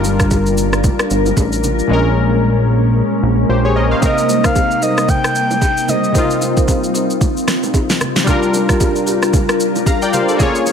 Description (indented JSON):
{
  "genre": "amapiano",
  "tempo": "113 BPM",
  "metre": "4/4",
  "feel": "swing 58% on 16ths",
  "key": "C minor",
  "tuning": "A4 = 439 Hz",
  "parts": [
    { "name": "warm analog keys", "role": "accompaniment", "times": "0.0-10.7 s", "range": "Bb2 to Bb5", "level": "-19 LUFS", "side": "left 2 dB", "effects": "chorus" },
    { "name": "glassy FM pad", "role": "sustained chords", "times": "0.0-10.7 s", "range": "C3 to Bb4", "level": "-19 LUFS", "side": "left 1 dB", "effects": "ensemble chorus, built-in reverb, sidechain pumping" },
    { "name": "fat analog bass", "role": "bass", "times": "0.0-3.9 s", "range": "G1 to Bb1", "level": "-16 LUFS", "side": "equal", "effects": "none" },
    { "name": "smooth R&B drum kit", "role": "drums", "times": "0.0-10.7 s", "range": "kick drum, rim click, shaker, snare drum", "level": "-17 LUFS", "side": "equal", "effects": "none" },
    { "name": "bongos and congas", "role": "percussion", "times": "0.0-10.7 s", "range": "none", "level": "-25 LUFS", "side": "right 6 dB", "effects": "none" },
    { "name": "breathy flute-like synth lead", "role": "melody", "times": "4.0-6.4 s", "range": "Eb5 to G5", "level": "-17 LUFS", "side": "equal", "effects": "chorus, ping-pong delay" },
    { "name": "marimba with medium mallets", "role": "stabs", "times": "4.0-10.6 s", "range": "Db4 to C5", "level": "-22 LUFS", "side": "right 3 dB", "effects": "ping-pong delay" }
  ],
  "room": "light reverb, digital ambience",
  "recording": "none",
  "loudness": "-12 LUFS",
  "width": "side -7 dB against mid",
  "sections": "0.0-10.7 A section",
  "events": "drums muted 1.9-4.0",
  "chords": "0.0 Gm7; 1.9 Bbm7; 4.0 Cm7; 8.3 Gm7"
}